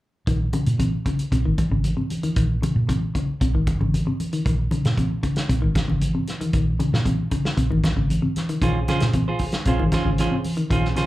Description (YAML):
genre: afrobeat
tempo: 115 BPM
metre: 4/4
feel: straight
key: Bb minor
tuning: A4 = 443 Hz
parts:
  - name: clean electric guitar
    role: arpeggios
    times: 0.3-11.1 s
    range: C3 to Eb3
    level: -25 LUFS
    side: left 2 dB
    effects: none
  - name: hollow-body short-scale fingered electric bass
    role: bass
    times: 0.3-10.9 s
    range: Ab1 to Bb2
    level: -22 LUFS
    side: equal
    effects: none
  - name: warm soul drum kit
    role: drums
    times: 0.3-11.1 s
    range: hi-hat, kick drum, snare drum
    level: -26 LUFS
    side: equal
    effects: none
  - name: congas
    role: percussion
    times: 0.5-11.1 s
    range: none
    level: -27 LUFS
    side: right 1 dB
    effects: none
  - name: clean electric guitar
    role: stabs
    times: 8.6-11.1 s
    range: Db4 to C5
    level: -25 LUFS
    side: right 4 dB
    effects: slapback echo
room: moderate club reverb, RT60 0.6 s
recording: live gig heard through the venue's PA, club reverb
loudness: -20 LUFS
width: side -16 dB against mid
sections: 0.3-11.1 A section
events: none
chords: 0.3 Bbm9